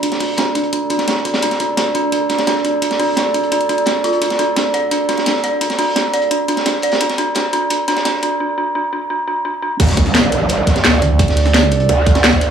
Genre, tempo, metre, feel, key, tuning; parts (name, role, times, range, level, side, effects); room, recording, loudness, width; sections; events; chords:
dark technical drum and bass; 172 BPM; 4/4; straight; A4 = 440 Hz
dark analog pad; sustained chords; 0.0-12.5 s; D4 to D5; -20 LUFS; right 3 dB; chorus, sidechain pumping
dark detuned synth bell; arpeggios; 0.0-9.7 s; D4 to D5; -18 LUFS; equal; chorus, sidechain pumping, low-pass filter, tape echo
crunchy breakbeat drum kit; drums; 0.0-12.5 s; hi-hat, snare drum; -22 LUFS; right 1 dB; high-pass filter on hats, small room reverb, high-pass filter on snare, high-pass filter on room
drum and bass drum kit; drums; 0.0-12.5 s; crash cymbal, hi-hat, snare drum; -18 LUFS; equal; overdrive, small room reverb
growl bass; bass; 9.8-12.5 s; C2 to D2; -17 LUFS; equal; distortion, chorus, overdrive, sidechain pumping
electronic kick drum; drums; 9.8-12.4 s; -14 LUFS; right 1 dB; overdrive, small room reverb
impact; sound effects; 9.8-11.2 s; -22 LUFS; right 1 dB
growling FM bass; bass; 11.0-11.9 s; D2; -14 LUFS; right 1 dB
moderate plate reverb, RT60 1.3 s; high-pass filter, small room ambience; -14 LUFS; side -8 dB against mid
0.0-9.8 A section; 9.8-12.5 B section
build-up 0.0-9.8; filter sweep on synth bell 0.0-9.8; break 8.4-9.8; drop 9.8-12.5; impact 9.8-11.2
0.0 D5